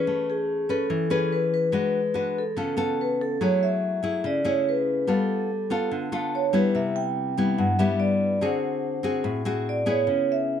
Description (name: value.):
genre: bossa nova.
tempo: 144 BPM.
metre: 4/4.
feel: straight.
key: unclear.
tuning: A4 = 440 Hz.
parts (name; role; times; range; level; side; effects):
vibraphone with medium mallets; melody; 0.0-10.6 s; G#4 to G5; -25 LUFS; right 1 dB; none.
nylon-string guitar; accompaniment; 0.0-10.6 s; G2 to B4; -25 LUFS; left 2 dB; none.
room: light reverb.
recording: close, detailed microphones.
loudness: -22 LUFS.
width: side -9 dB against mid.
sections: 0.0-3.4 A section; 3.4-10.6 B section.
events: none.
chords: 0.1 Amaj9; 1.7 G#m7b5; 2.6 C#7b13; 3.4 F#m9; 5.1 G9; 6.7 Cmaj7; 8.4 D7#11; 10.1 C#m7.